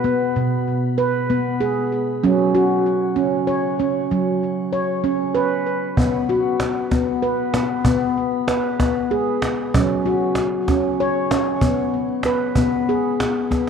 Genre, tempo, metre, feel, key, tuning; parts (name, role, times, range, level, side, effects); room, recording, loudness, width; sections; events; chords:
world meditative, meditative tuned percussion; 64 BPM (dotted quarters); 6/8; straight; A4 = 441 Hz
handpan; arpeggios; 0.0-13.7 s; B2 to C#5; -18 LUFS; equal; ping-pong delay, shimmer reverb
cajon; percussion; 6.0-13.7 s; -23 LUFS; right 1 dB
wet echo chamber reverb, RT60 2.4 s; worn, warbling old tape, cassette tape, warbly pitch drift; -18 LUFS; side -6 dB against mid
0.0-13.5 A section
0.0 B5; 2.2 F#5; 6.0 B5; 9.7 F#5; 11.6 G#madd11/B